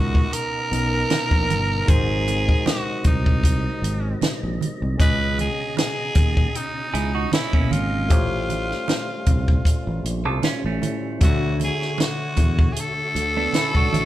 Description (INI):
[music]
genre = lush 1970s-style soul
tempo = 77 BPM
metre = 4/4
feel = swing 54% on 16ths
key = unclear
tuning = A4 = 440 Hz
[part]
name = raspy tenor saxophone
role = melody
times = 0.0-14.1 s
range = D#4 to B4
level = -26 LUFS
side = equal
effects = none
[part]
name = barky tine electric piano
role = accompaniment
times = 0.0-14.1 s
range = B2 to E5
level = -30 LUFS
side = left 2 dB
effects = none
[part]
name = tonewheel organ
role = sustained chords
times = 0.0-14.1 s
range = B2 to D#5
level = -35 LUFS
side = equal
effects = slow rotary speaker
[part]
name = fingered electric bass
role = bass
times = 0.0-14.1 s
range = G1 to A2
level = -25 LUFS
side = equal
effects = none
[part]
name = compact cocktail drum kit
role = drums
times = 0.1-14.1 s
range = hi-hat, kick drum, snare drum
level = -20 LUFS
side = equal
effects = none
[part]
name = congas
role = percussion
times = 1.1-14.1 s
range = none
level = -30 LUFS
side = right 5 dB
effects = none
[part]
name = semi-hollow electric guitar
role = riff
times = 6.9-14.1 s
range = A3 to A4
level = -27 LUFS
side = right 5 dB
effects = none
[sound]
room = moderate large studio reverb, RT60 1.0 s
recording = band playing live in one room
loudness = -19 LUFS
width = side -14 dB against mid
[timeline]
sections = 0.0-14.1 A section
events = none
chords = 0.0 Bmaj9; 1.9 G#7; 5.0 C#sus2; 8.1 A7alt; 11.2 Dmaj7